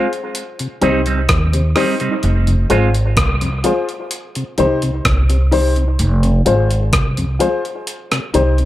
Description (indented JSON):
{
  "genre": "dub reggae",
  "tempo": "64 BPM",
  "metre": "4/4",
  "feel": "straight",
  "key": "F minor",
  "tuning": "A4 = 445 Hz",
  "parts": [
    { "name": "electric guitar with an envelope filter", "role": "accompaniment", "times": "0.0-2.9 s", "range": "G3 to F4", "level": "-21 LUFS", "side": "right 5 dB", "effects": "tape echo" },
    { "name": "dark upright piano", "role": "stabs", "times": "0.0-8.6 s", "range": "Eb4 to C5", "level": "-20 LUFS", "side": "left 3 dB", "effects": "tape echo" },
    { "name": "breakbeat sampler-style drum kit", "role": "drums", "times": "0.1-8.7 s", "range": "hi-hat, kick drum, rim click", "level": "-19 LUFS", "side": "equal", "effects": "overdrive" },
    { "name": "mellow tonewheel organ", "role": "accompaniment", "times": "0.6-8.7 s", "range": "F2 to C4", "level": "-24 LUFS", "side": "left 2 dB", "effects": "overdrive, chorus vibrato, slow rotary speaker" },
    { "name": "upright bass", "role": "bass", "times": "0.8-8.7 s", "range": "F1 to Eb2", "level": "-15 LUFS", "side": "equal", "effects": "none" }
  ],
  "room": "moderate spring reverb, RT60 2.5 s",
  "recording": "none",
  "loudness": "-14 LUFS",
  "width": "side -14 dB against mid",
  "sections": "0.0-8.7 A section",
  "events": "none",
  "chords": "0.3 Cm; 2.2 Fm; 4.1 Cm; 6.0 Fm; 7.9 Cm",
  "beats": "0.35 1.29 | 2.23 3.17 4.11 5.05 | 5.99 6.93 7.87"
}